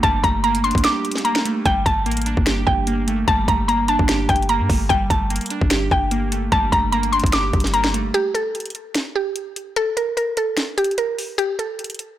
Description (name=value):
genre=hip hop, trap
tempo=148 BPM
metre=4/4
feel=half-time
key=G minor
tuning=A4 = 440 Hz
part: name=mallet-like synth pluck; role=melody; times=0.0-12.2 s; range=G4 to D6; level=-20 LUFS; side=equal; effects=chorus, low-pass filter
part: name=glassy digital keys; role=accompaniment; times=0.0-8.2 s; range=G3 to G4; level=-24 LUFS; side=right 2 dB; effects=chorus, low-pass filter
part: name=clean 808-style bass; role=bass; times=0.0-8.1 s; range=G1 to G2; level=-23 LUFS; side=equal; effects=none
part: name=trap drum kit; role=drums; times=0.0-12.1 s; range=finger snaps, hi-hat, kick drum, snare drum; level=-22 LUFS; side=equal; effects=none
room=digital ambience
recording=blown-out, overdriven recording, overdrive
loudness=-17 LUFS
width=side -12 dB against mid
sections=0.0-8.1 A section; 8.1-12.2 B section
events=break 0.8-1.7, 8.1-12.2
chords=0.0 Gmadd9; 8.1 N.C.